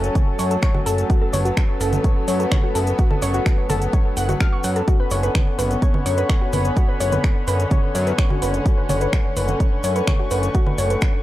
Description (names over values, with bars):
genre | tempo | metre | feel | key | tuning
melodic techno | 127 BPM | 4/4 | straight | unclear | A4 = 442 Hz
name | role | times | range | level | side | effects
warm studio string section | sustained chords | 0.0-11.2 s | D3 to C#4 | -27 LUFS | left 2 dB | vintage 12-bit sampler grit, sidechain pumping
fat analog bass | bass | 0.0-11.0 s | F#1 to F#2 | -22 LUFS | equal | sidechain pumping
house drum kit | drums | 0.0-11.1 s | congas, finger snaps, hi-hat | -27 LUFS | right 2 dB | none
cabasa | percussion | 0.0-11.1 s | none | -37 LUFS | left 2 dB | none
warbly tape-like pad | texture | 0.0-11.2 s | D3 to C#6 | -28 LUFS | equal | chorus, built-in reverb, sidechain pumping
warbly dusty pluck | arpeggios | 0.2-11.0 s | F#4 to F#6 | -26 LUFS | left 1 dB | chorus, sidechain pumping, tape echo
electronic kick drum | drums | 0.2-11.1 s | none | -18 LUFS | equal | none
room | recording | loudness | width
digital ambience | dry, gritty hardware recording | -17 LUFS | side -15 dB against mid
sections
0.0-11.2 A section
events
none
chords
0.0 F#m; 4.9 Bmadd9/F#